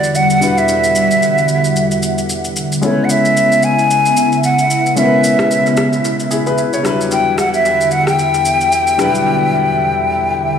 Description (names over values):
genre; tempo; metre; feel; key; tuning
amapiano; 112 BPM; 4/4; swing 58% on 16ths; unclear; A4 = 440 Hz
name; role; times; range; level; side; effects
breathy hollow jazz flute; melody; 0.0-10.6 s; C#5 to G#5; -14 LUFS; left 1 dB; dub echo
warm grand piano; accompaniment; 0.0-10.6 s; F#3 to C#5; -18 LUFS; left 3 dB; dub echo
hollow soft pad; sustained chords; 0.0-10.6 s; E2 to G5; -18 LUFS; right 2 dB; ensemble chorus
electronic shaker and rim click; drums; 0.0-9.3 s; none; -23 LUFS; equal; overdrive, dub echo
room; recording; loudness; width
moderate echo chamber reverb, RT60 2.1 s; echo-heavy mix, studio reverb; -11 LUFS; side -7 dB against mid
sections
0.0-10.6 A section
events
none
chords
0.0 Em9; 2.8 C#m7; 6.8 Em9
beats
0.15 | 0.68 1.22 1.75 2.29 | 2.83 3.36 3.90 4.43 | 4.97 5.50 6.04 6.58 | 7.11 7.65 8.18 8.72 | 9.26 9.79 10.33